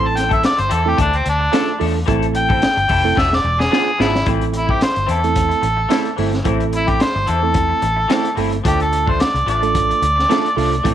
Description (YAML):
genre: straight-eighth soul blues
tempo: 110 BPM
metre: 4/4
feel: swing 54% on 16ths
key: A minor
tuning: A4 = 440 Hz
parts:
  - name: mellow harmonica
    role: melody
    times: 0.0-10.9 s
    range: C4 to A5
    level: -18 LUFS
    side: equal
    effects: overdrive, slapback echo
  - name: bright reed electric piano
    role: accompaniment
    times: 0.0-10.9 s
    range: A3 to A4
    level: -22 LUFS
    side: right 10 dB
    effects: none
  - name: electric guitar through a small old amp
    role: stabs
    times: 0.0-10.9 s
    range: E3 to A4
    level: -26 LUFS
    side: left 11 dB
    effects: analog chorus
  - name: vintage muted fingered electric bass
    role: bass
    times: 0.0-10.9 s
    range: E1 to E2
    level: -21 LUFS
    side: left 1 dB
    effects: none
  - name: crunchy breakbeat drum kit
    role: drums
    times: 0.2-10.9 s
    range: hi-hat, kick drum, snare drum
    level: -21 LUFS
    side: left 1 dB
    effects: none
room: light reverb, small room ambience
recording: 1960s-style stereo with parts hard left and right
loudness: -14 LUFS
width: side -10 dB against mid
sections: 0.0-4.3 A section; 4.3-10.9 A section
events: harmonica solo 0.0-4.3, 4.3-10.9; drum fill 3.2-4.3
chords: 0.0 Am; 1.0 Dm; 2.1 Am; 3.2 E7b9; 4.3 Am; 8.6 Dm